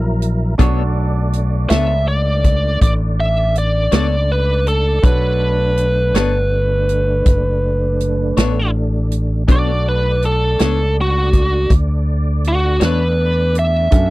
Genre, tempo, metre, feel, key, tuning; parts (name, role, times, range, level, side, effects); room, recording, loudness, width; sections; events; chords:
slow blues; 54 BPM (dotted quarters); 12/8; straight; B minor; A4 = 440 Hz
clear concert grand piano; accompaniment; 0.0-14.1 s; C#4 to C#6; -28 LUFS; right 5 dB
mellow tonewheel organ; sustained chords; 0.0-14.1 s; F#3 to D5; -26 LUFS; right 2 dB; slow rotary speaker, chorus vibrato
fretless electric bass; bass; 0.0-14.1 s; F#1 to F#2; -17 LUFS; equal
natural country drum kit; drums; 0.2-14.1 s; hi-hat, kick drum, snare drum; -14 LUFS; equal
clean electric guitar; accompaniment; 0.6-13.0 s; B3 to C#5; -21 LUFS; left 9 dB; tremolo
biting lead guitar; melody; 1.7-14.1 s; F#4 to E5; -18 LUFS; right 1 dB; overdrive
little or no reverb; dry, close 1970s-style studio recording; -14 LUFS; side -18 dB against mid
0.0-9.5 A section; 9.5-14.1 B section
lead electric guitar solo 9.5-14.1
0.0 F#7; 0.6 Bm9